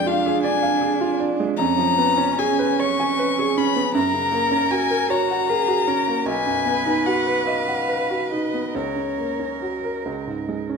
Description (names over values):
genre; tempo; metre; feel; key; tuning
classical, slow romantic movement for piano trio; 45-53 BPM (dotted quarters); 6/8; rubato; F# major; A4 = 440 Hz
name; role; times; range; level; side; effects
dark violin; melody; 0.0-10.1 s; C#5 to C#6; -23 LUFS; left 8 dB; none
rich cello; second line; 0.0-10.7 s; C#4 to B4; -25 LUFS; right 7 dB; none
clear baby grand piano; accompaniment; 0.0-10.8 s; B1 to G#5; -23 LUFS; right 2 dB; none
room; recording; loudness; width
moderate recital hall reverb, RT60 1.5 s; minimal, uncompressed stereo recording; -19 LUFS; side -5 dB against mid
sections
0.0-10.8 A section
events
none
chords
0.0 Ddim/F; 1.6 C#7/E#; 4.0 F#; 6.3 B; 8.7 F#/C#; 10.1 C#5